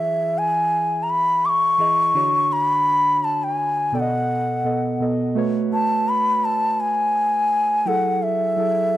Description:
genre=R&B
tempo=84 BPM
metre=4/4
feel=swing 54% on 16ths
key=unclear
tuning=A4 = 440 Hz
part: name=reedy bansuri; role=melody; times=0.0-9.0 s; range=E5 to D6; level=-18 LUFS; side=left 1 dB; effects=tape echo
part: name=muted felt-like synth keys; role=accompaniment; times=0.0-9.0 s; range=B2 to E5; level=-25 LUFS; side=right 2 dB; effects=chorus
room=studio ambience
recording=dry, gritty hardware recording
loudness=-18 LUFS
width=side -14 dB against mid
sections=0.0-5.4 A section; 5.4-9.0 B section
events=none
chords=0.0 Emaj7; 2.1 Dmaj7; 3.9 B7; 5.4 A69; 7.9 F#m9

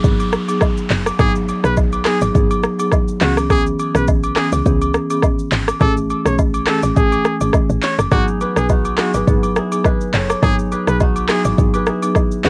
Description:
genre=afrobeats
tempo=104 BPM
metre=4/4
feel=swing 55% on 16ths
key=unclear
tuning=A4 = 436 Hz
part: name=marimba with medium mallets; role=accompaniment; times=0.0-12.5 s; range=E3 to G#4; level=-22 LUFS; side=equal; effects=cassette tape
part: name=woody log drum bass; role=bass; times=0.0-12.5 s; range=F#1 to C#2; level=-23 LUFS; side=equal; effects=none
part: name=afro-pop drum kit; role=drums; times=0.0-12.5 s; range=handclaps, hi-hat, kick drum, rim click, shaker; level=-20 LUFS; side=equal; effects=cassette tape
part: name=downlifter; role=sound effects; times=0.0-3.5 s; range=none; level=-38 LUFS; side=equal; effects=none
part: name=agogo bells and woodblock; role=percussion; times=0.2-12.3 s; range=none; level=-27 LUFS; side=equal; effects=none
part: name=bright trumpet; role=melody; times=1.2-12.5 s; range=F#4 to C#5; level=-25 LUFS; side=equal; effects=cassette tape, analog delay
part: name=kora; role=riff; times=8.1-12.5 s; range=D#4 to C#5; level=-29 LUFS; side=equal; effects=cassette tape, analog delay
room=light reverb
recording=home recording on cassette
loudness=-17 LUFS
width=mono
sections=0.0-12.5 A section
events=none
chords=0.0 G#m7; 3.2 C#m7; 5.8 Amaj7; 8.1 G#m7

